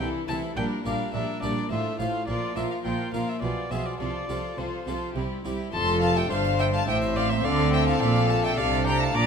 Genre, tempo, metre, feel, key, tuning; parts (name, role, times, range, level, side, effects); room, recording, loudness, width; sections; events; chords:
classical, baroque-style concerto movement with solo episodes; 105 BPM; 3/4; straight; F major; A4 = 439 Hz
dark violin; melody; 0.0-9.3 s; C5 to Bb5; -32 LUFS; left 2 dB
rich chamber violin section; melody; 0.0-9.3 s; G4 to D6; -31 LUFS; left 2 dB
warm studio violin section; second line; 0.0-9.3 s; D4 to D5; -31 LUFS; left 5 dB
dark chamber viola section; accompaniment; 0.0-9.3 s; E3 to F4; -32 LUFS; right 1 dB
harpsichord; accompaniment; 0.0-9.3 s; F2 to F5; -34 LUFS; equal
rich chamber cello section; bass; 0.0-9.3 s; F2 to D3; -31 LUFS; right 2 dB
rich chamber double bass section; bass; 0.0-9.3 s; F1 to D2; -30 LUFS; right 4 dB
light reverb; close, detailed microphones; -23 LUFS; side -6 dB against mid
0.0-5.7 A section; 5.7-9.3 B section
0.0 Am/C; 0.6 Gm/Bb; 1.7 F/A; 2.3 Bb5; 3.4 Bdim7; 4.0 F/C; 5.2 C; 5.7 F; 6.9 Am; 7.4 D5